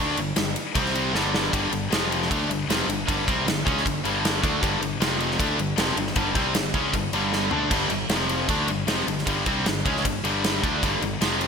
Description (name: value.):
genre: hard rock.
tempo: 155 BPM.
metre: 4/4.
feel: straight.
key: unclear.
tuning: A4 = 440 Hz.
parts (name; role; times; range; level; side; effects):
cranked stack guitar; riff; 0.0-11.5 s; F2 to D4; -27 LUFS; right 11 dB; overdrive, analog chorus.
tight distorted guitar; riff; 0.0-11.5 s; F2 to D4; -26 LUFS; left 11 dB; distortion.
fuzz fingered electric bass; bass; 0.0-11.5 s; F1 to D2; -31 LUFS; equal; overdrive.
big rock drum kit; drums; 0.2-11.5 s; crash cymbal, kick drum, ride cymbal, snare drum, toms; -26 LUFS; right 1 dB; none.
room: moderate lush hall reverb, RT60 1.9 s, small room ambience.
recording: bright 1980s-style digital production.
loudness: -21 LUFS.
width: side -6 dB against mid.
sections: 0.0-1.5 A section; 1.5-11.5 B section.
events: drum fill 1.1-1.5, 7.3-7.7.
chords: 0.0 G5; 0.8 C5; 1.1 G5; 1.9 F5; 2.3 G5; 5.0 F5; 5.4 G5; 8.1 F5; 8.5 G5.